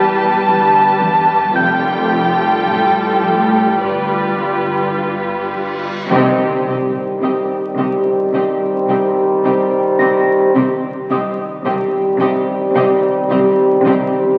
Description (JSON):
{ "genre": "cinematic", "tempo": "54 BPM", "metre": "4/4", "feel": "straight", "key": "C minor from 6.1 s", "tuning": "A4 = 438 Hz", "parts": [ { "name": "muted studio violin section", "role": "melody", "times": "0.0-13.9 s", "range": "D5 to A5", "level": "-20 LUFS", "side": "equal", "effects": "none" }, { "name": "muted studio violin section", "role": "second line", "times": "0.0-13.9 s", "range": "G4 to B4", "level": "-25 LUFS", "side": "equal", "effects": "none" }, { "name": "muted studio viola section", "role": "accompaniment", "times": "0.0-13.9 s", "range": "G3 to G4", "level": "-25 LUFS", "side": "equal", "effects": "none" }, { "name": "muted studio cello section", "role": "riff", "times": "0.0-14.2 s", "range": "E2 to C4", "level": "-26 LUFS", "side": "equal", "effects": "none" }, { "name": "muted studio double bass section", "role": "bass", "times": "0.0-13.9 s", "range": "E1 to C2", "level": "-30 LUFS", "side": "equal", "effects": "none" }, { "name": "muted symphonic cello section", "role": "bass", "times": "0.0-13.9 s", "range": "E2 to C3", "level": "-27 LUFS", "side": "equal", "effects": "none" }, { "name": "small celesta", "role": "texture", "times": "0.0-14.4 s", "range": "Eb5 to Bb6", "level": "-26 LUFS", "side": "equal", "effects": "none" }, { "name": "reverse cymbal and sub drop", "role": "sound effects", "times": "5.3-10.6 s", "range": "none", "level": "-34 LUFS", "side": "equal", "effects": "none" }, { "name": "warm French horn section", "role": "sustained chords", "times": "6.1-14.4 s", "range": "C4 to G4", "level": "-20 LUFS", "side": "equal", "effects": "none" }, { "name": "warm trombone section", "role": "sustained chords", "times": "6.1-14.4 s", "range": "Eb3 to G3", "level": "-20 LUFS", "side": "equal", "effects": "none" }, { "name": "timpani", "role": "percussion", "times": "6.1-7.7 s", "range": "C3", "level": "-30 LUFS", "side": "equal", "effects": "none" } ], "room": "wet scoring stage reverb, RT60 1.9 s", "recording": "very old 78 rpm record, vinyl crackle", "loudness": "-15 LUFS", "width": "mono", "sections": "0.0-6.1 A section; 6.1-14.4 B section", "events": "reverse cymbal 5.3-6.1; band accent 6.1-7.2; impact 6.1-10.6", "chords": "0.0 Em; 1.6 Fadd9; 3.8 G7; 6.1 Cm", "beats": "0.46 | 1.56 2.68 3.82 4.97 | 6.11 7.22 8.34 9.44 | 10.55 11.66 12.76 13.86" }